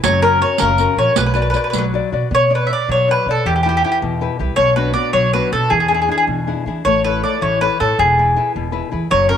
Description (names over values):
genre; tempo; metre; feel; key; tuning
italian folk, Italian serenade; 106 BPM (dotted quarters); 6/8; straight; B minor; A4 = 440 Hz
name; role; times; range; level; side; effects
mandolin; melody; 0.0-9.4 s; G4 to E5; -15 LUFS; left 1 dB; none
nylon-string guitar; accompaniment; 0.0-9.4 s; B2 to D5; -22 LUFS; left 8 dB; none
upright bass; bass; 0.0-9.4 s; E1 to E3; -21 LUFS; right 2 dB; none
riq; percussion; 0.0-1.9 s; none; -22 LUFS; right 14 dB; none
room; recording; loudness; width
moderate spring reverb, RT60 1.9 s, small room ambience; 1960s-style stereo with parts hard left and right; -14 LUFS; side -8 dB against mid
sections
0.0-2.3 A section; 2.3-9.4 A section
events
none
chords
0.0 F#; 1.2 Bm; 2.3 Bmadd9; 3.5 Em; 4.6 Bm; 5.7 E7; 6.8 A; 8.0 E